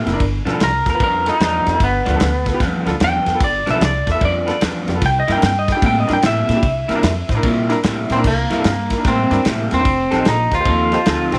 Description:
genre	electric blues shuffle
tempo	149 BPM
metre	4/4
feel	swing 65% on 8ths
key	C mixolydian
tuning	A4 = 440 Hz
part	electric guitar through a small old amp	riff	0.0-11.4 s	G2 to A4	-24 LUFS	equal	phaser
part	clear upright piano	accompaniment	0.1-11.4 s	B3 to C5	-27 LUFS	equal	none
part	upright bass	bass	0.1-11.4 s	F1 to Bb2	-24 LUFS	equal	none
part	warm soul drum kit	drums	0.1-11.4 s	crash cymbal, kick drum, ride cymbal, snare drum	-24 LUFS	equal	none
part	electric guitar through a small old amp	melody	0.6-11.4 s	Bb3 to G5	-21 LUFS	equal	none
room	light reverb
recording	none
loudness	-17 LUFS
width	mono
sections	0.0-8.2 A section; 8.2-11.4 B section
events	clean electric guitar solo 0.0-8.2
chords	0.2 G7; 5.0 C7; 9.9 F7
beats	| 0.20 0.60 1.00 1.40 | 1.80 2.21 2.61 3.01 | 3.41 3.81 4.21 4.62 | 5.02 5.42 5.82 6.23 | 6.63 7.03 7.43 7.84 | 8.24 8.64 9.05 9.45 | 9.85 10.25 10.66 11.06

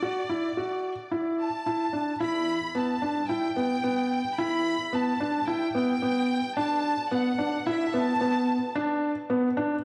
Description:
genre	piano and strings electronica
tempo	110 BPM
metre	4/4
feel	straight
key	E minor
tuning	A4 = 442 Hz
part	rich chamber violin section	melody	0.0-8.8 s	D5 to B5	-34 LUFS	equal	tape echo
part	felt-muted upright piano	riff	0.0-9.7 s	B3 to F#4	-29 LUFS	equal	tape echo
part	dark detuned saw bass	bass	2.2-8.7 s	B1 to G2	-49 LUFS	equal	none
room	wet echo chamber reverb, RT60 1.4 s, studio reverb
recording	dark, warm production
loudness	-27 LUFS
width	mono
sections	0.0-2.2 A section; 2.2-9.8 B section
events	build-up 2.2-9.8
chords	0.0 Dadd9; 2.2 Em; 6.6 Bm7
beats	| 0.03 0.57 1.12 1.67 | 2.21 2.76 3.30 3.85 | 4.39 4.94 5.48 6.03 | 6.58 7.12 7.67 8.21 | 8.76 9.30

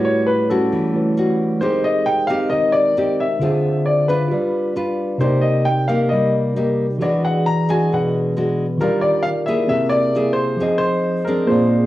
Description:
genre	bossa nova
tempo	134 BPM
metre	4/4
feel	straight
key	unclear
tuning	A4 = 440 Hz
part	warm baby grand piano	melody	0.0-11.9 s	A4 to Bb5	-20 LUFS	left 2 dB	cassette tape, plate reverb
part	nylon-string guitar	accompaniment	0.0-11.9 s	A2 to Cb5	-21 LUFS	left 1 dB	none
part	tine electric piano	accompaniment	0.0-11.9 s	C3 to Fb5	-20 LUFS	right 1 dB	medium stereo tremolo
room	moderate studio reverb, RT60 0.6 s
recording	home recording on cassette, studio reverb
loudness	-16 LUFS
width	side -15 dB against mid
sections	0.0-11.9 A section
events	none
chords	0.0 A13; 1.6 Abmaj7; 3.4 Dm7b5; 4.3 G7; 5.2 Cm7; 7.0 E9; 8.8 Ebmaj9; 9.7 C7b13; 10.6 Fm7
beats	0.28 0.73 1.18 | 1.62 2.07 2.52 2.97 | 3.42 3.87 4.32 4.77 | 5.21 5.66 6.11 6.56 | 7.01 7.46 7.91 8.36 | 8.80 9.25 9.70 10.15 | 10.60 11.05 11.50

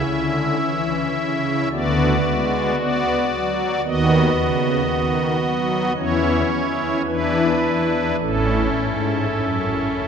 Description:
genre	classical, chorale-style piece for pipe organ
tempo	52-57 BPM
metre	4/4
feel	rubato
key	unclear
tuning	A4 = 439 Hz
part	pipe organ, strings celeste	solo	0.0-10.1 s	A1 to E5	-18 LUFS	equal	none
room	wet cathedral reverb, RT60 4.5 s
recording	none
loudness	-18 LUFS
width	side -7 dB against mid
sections	0.0-10.1 A section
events	none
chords	0.0 C#m; 1.7 Bm/D; 3.9 B/D#; 6.0 C#m/E; 7.1 E5; 8.2 A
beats	0.65 1.72 2.79 | 3.85 4.90 5.97 7.06 | 8.19 9.34

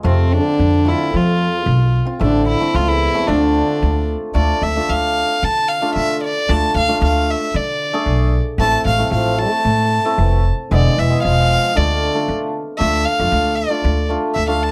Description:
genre	klezmer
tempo	113 BPM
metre	4/4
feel	straight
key	D dorian sharp4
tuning	A4 = 440 Hz
part	rich violin	melody	0.0-14.7 s	C4 to A5	-21 LUFS	equal	none
part	warm trombone	second line	0.0-4.1, 8.6-12.3 s	E2 to A3	-26 LUFS	equal	none
part	hammered dulcimer	accompaniment	0.0-14.7 s	G#3 to G#4	-24 LUFS	equal	none
part	upright bass	bass	0.0-14.7 s	E1 to F3	-20 LUFS	equal	none
room	light reverb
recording	none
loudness	-17 LUFS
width	mono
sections	0.0-4.4 A section; 4.4-12.8 B section; 12.8-14.7 C section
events	speeding up 0.0-14.7; violin solo 12.8-14.7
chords	0.0 F; 2.2 Am; 3.3 Dm; 8.6 Am; 10.7 E; 11.8 Dm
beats	| 0.04 0.59 1.13 1.67 | 2.21 2.75 3.29 3.82 | 4.36 4.89 5.43 5.96 | 6.49 7.02 7.55 8.08 | 8.61 9.13 9.66 10.18 | 10.71 11.23 11.76 12.28 | 12.80 13.32 13.84 14.36

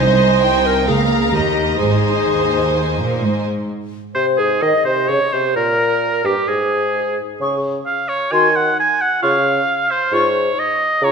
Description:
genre	classical, dramatic, fast romantic movement for symphony orchestra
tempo	130 BPM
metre	4/4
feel	rubato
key	Ab major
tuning	A4 = 440 Hz
part	rich studio violin section	melody	0.0-3.4 s	C5 to G5	-23 LUFS	left 2 dB	none
part	warm clarinet	second line	0.0-11.1 s	F4 to Eb5	-22 LUFS	left 2 dB	none
part	warm symphonic violin section	second line	0.0-3.4 s	Eb5 to Bb5	-24 LUFS	left 3 dB	none
part	warm symphonic viola section	accompaniment	0.0-3.4 s	Bb3 to C5	-20 LUFS	right 4 dB	none
part	rich symphonic cello section	bass	0.0-3.7 s	C2 to Bb2	-21 LUFS	right 3 dB	none
part	rich symphonic double bass section	bass	0.0-2.3 s	Ab1 to Eb2	-22 LUFS	right 3 dB	none
part	bright oboe	second line	4.1-11.1 s	G4 to Ab5	-17 LUFS	right 2 dB	none
part	small flute group	second line	4.1-11.1 s	G4 to Db6	-22 LUFS	left 3 dB	none
part	mellow bassoon	accompaniment	4.2-11.1 s	G2 to Eb3	-20 LUFS	right 1 dB	none
room	wet scoring stage reverb, RT60 1.7 s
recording	none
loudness	-14 LUFS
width	side -5 dB against mid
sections	0.0-3.7 A section; 3.7-11.1 B section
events	none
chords	0.0 Ab/C; 0.9 Bbm7/Db; 1.3 Eb; 1.8 Ab; 3.7 N.C.; 7.4 Db5; 8.3 Ebmadd11; 9.2 Db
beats	| 0.00 0.45 0.89 1.34 | 1.81 2.29 2.76 3.22 | 3.69 4.16 4.63 5.10 | 5.57 6.03 6.49 6.96 | 7.41 7.87 8.32 8.78 | 9.23 9.68 10.13 10.57 | 11.02

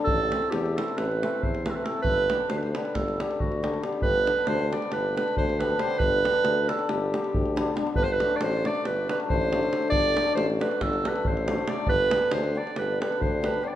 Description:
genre	balkan folk, Balkan wedding band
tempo	275 BPM (eighths)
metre	9/8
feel	straight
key	G major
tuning	A4 = 442 Hz
part	mellow clarinet	melody	0.0-13.8 s	F#4 to D5	-26 LUFS	right 2 dB	none
part	hammered dulcimer	accompaniment	0.0-13.8 s	D3 to E4	-31 LUFS	left 5 dB	none
part	clear tuba	bass	0.1-13.6 s	G1 to E2	-31 LUFS	left 1 dB	none
part	davul	percussion	0.1-13.6 s	none	-31 LUFS	right 1 dB	none
room	moderate recital hall reverb, RT60 1.6 s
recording	none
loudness	-23 LUFS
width	side -12 dB against mid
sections	0.0-4.0 A section; 4.0-13.8 B section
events	none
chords	0.1 Am; 2.0 G; 7.9 D/G; 11.9 G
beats	| 0.07 0.29 0.51 0.73 0.95 1.17 1.39 1.61 1.83 | 2.05 2.27 2.49 2.71 2.92 3.14 3.36 3.58 3.80 | 4.02 4.24 4.46 4.67 4.89 5.11 5.33 5.55 5.77 | 5.99 6.20 6.42 6.64 6.86 7.08 7.29 7.51 7.73 | 7.95 8.16 8.38 8.60 8.82 9.04 9.25 9.47 9.69 | 9.91 10.12 10.34 10.56 10.78 10.99 11.21 11.43 11.64 | 11.86 12.08 12.29 12.51 12.73 12.94 13.16 13.38 13.59

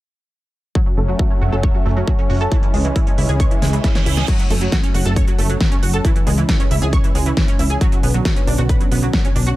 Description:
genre	uplifting trance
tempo	136 BPM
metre	4/4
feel	straight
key	F# minor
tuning	A4 = 440 Hz
part	lush unison pad	sustained chords	0.8-9.6 s	D3 to C#4	-25 LUFS	right 1 dB	chorus, sidechain pumping
part	analog pluck	arpeggios	0.8-9.5 s	E3 to C#5	-24 LUFS	right 3 dB	ensemble chorus, sidechain pumping, tape echo
part	big-room dance drum kit	drums	0.8-9.6 s	crash cymbal, hi-hat, snare drum	-24 LUFS	equal	low-pass filter on hats, low-pass filter on snare, low-pass filter on cymbals
part	electronic kick drum	drums	0.8-9.2 s	none	-17 LUFS	equal	none
part	plucky analog bass	bass	1.0-9.5 s	F#1 to C#2	-18 LUFS	equal	sidechain pumping
part	reverse cymbal	sound effects	3.7-4.3 s	none	-29 LUFS	right 8 dB	none
room	little or no reverb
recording	none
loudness	-14 LUFS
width	side -16 dB against mid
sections	0.8-4.3 A section; 4.3-9.6 B section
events	filter sweep on analog synth bass 0.8-4.3; filter sweep on synth pluck 0.8-4.3; drum fill 3.6-4.3; reverse cymbal 3.7-4.3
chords	0.8 F#m; 2.5 C#m; 4.3 F#m; 6.0 C#m; 7.8 Bmadd9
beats	| 0.75 1.19 1.64 2.08 | 2.52 2.96 3.40 3.84 | 4.28 4.72 5.16 5.61 | 6.05 6.49 6.93 7.37 | 7.81 8.25 8.69 9.13

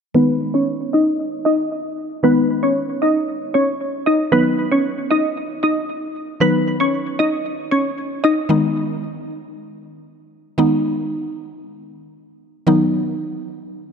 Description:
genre	pop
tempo	115 BPM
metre	4/4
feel	straight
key	G# minor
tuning	A4 = 440 Hz
part	glassy wavetable pluck	melody	0.1-8.3 s	B3 to D#5	-18 LUFS	equal	chorus, low-pass filter, digital delay
part	mallet-like synth pluck	accompaniment	0.1-13.9 s	D#3 to D#4	-20 LUFS	equal	chorus, phaser, low-pass filter
room	wet plate reverb, RT60 2.9 s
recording	dark, warm production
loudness	-16 LUFS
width	side -6 dB against mid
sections	0.1-8.5 A section; 8.5-13.9 B section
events	filter sweep 0.1-8.5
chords	0.1 G#m; 4.3 B; 8.5 G#m; 12.7 B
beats	| 0.15 0.67 1.19 1.71 | 2.24 2.76 3.28 3.80 | 4.32 4.84 5.37 5.89 | 6.41 6.93 7.45 7.97 | 8.50 9.02 9.54 10.06 | 10.58 11.11 11.63 12.15 | 12.67 13.19 13.71

